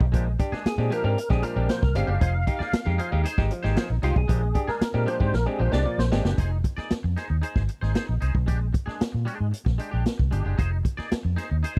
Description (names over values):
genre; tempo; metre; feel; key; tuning
funk; 115 BPM; 4/4; straight; F dorian; A4 = 442 Hz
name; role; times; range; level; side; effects
twangy electric guitar; accompaniment; 0.0-11.8 s; Ab3 to D5; -38 LUFS; equal; ensemble chorus
overdriven clav; stabs; 0.0-6.3 s; Bb2 to G4; -33 LUFS; equal; none
vintage muted fingered electric bass; bass; 0.0-11.8 s; F1 to Bb2; -27 LUFS; equal; none
swinging big-band drum kit; drums; 0.0-11.8 s; hi-hat, kick drum, snare drum; -28 LUFS; equal; none
percussive tonewheel organ; melody; 0.7-6.1 s; F4 to F5; -32 LUFS; equal; chorus vibrato, slow rotary speaker
room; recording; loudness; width
small room ambience; dry, close 1970s-style studio recording; -25 LUFS; mono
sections
0.0-6.4 A section; 6.4-11.8 B section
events
tonewheel organ solo 0.0-6.4; drum fill 5.3-6.4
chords
0.1 Bb13; 2.2 Fm7; 4.3 Bb13; 6.4 Fm7; 8.5 Bb13; 10.6 Fm7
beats
| 0.14 0.66 1.18 1.70 | 2.21 2.73 3.26 3.78 | 4.30 4.82 5.34 5.86 | 6.38 6.91 7.43 7.96 | 8.48 9.01 9.53 10.06 | 10.59 11.11 11.64